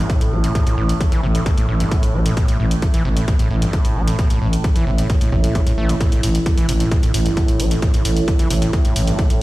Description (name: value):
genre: driving peak-time techno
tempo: 132 BPM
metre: 4/4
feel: straight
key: unclear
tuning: A4 = 442 Hz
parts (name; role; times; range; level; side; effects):
- overdriven acid bass; riff; 0.0-9.4 s; G2 to A3; -23 LUFS; equal; distortion, sidechain pumping, ping-pong delay
- growling FM bass; bass; 0.0-9.1 s; A1; -18 LUFS; equal; sidechain pumping
- overtone-sweeping drone; drone; 0.0-9.4 s; A2; -25 LUFS; right 3 dB; chorus, built-in reverb, sidechain pumping
- electronic hi-hat; drums; 0.1-9.4 s; none; -29 LUFS; left 1 dB; sidechain pumping on hats
- electronic kick drum; drums; 0.1-9.3 s; none; -17 LUFS; equal; none
room: light reverb, digital ambience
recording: played on a big sound system in a bare room, stone room reverb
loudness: -15 LUFS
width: side -18 dB against mid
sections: 0.0-9.4 A section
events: none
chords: none